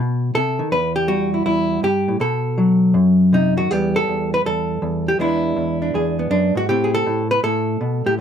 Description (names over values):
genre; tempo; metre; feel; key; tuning
solo jazz; 161 BPM; 4/4; swing 66% on 8ths; E minor; A4 = 440 Hz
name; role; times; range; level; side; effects
hollow-body jazz guitar; solo; 0.0-8.2 s; E2 to B4; -16 LUFS; equal; none
room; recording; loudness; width
light reverb; close, detailed microphones; -16 LUFS; side -8 dB against mid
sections
0.0-3.7 A section; 3.7-8.2 B section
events
none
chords
0.0 B7; 0.7 Emadd9; 2.2 B7; 3.7 Em; 5.2 E7; 6.7 Am7